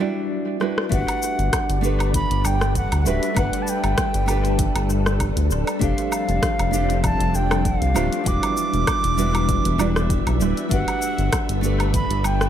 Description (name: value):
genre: sunset chillout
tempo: 98 BPM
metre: 4/4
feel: swing 54% on 16ths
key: G major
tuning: A4 = 440 Hz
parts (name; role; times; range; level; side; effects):
- nylon-string guitar; accompaniment; 0.0-12.5 s; G3 to D5; -26 LUFS; right 1 dB; auto-pan, tape echo
- deep house drum kit; drums; 0.6-12.5 s; hi-hat, rim click, shaker, woodblock; -27 LUFS; equal; small room ambience, tape echo
- bright baroque flute; melody; 0.9-12.5 s; E5 to D6; -26 LUFS; right 1 dB; tape echo
- soft string machine; sustained chords; 1.3-12.5 s; E3 to E5; -27 LUFS; left 1 dB; ensemble chorus
- round analog bass; bass; 0.9-12.5 s; D1 to D2; -22 LUFS; equal; none
- electronic kick drum; drums; 0.9-12.1 s; none; -26 LUFS; equal; small room ambience
room: light reverb, digital ambience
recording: echo-heavy mix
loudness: -18 LUFS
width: side -10 dB against mid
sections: 0.9-12.5 A section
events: break 0.0-0.9; drum fill 0.6-0.9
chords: 0.0 Em7; 0.9 Gmaj7; 5.8 F6; 8.3 Em7; 10.7 Gmaj7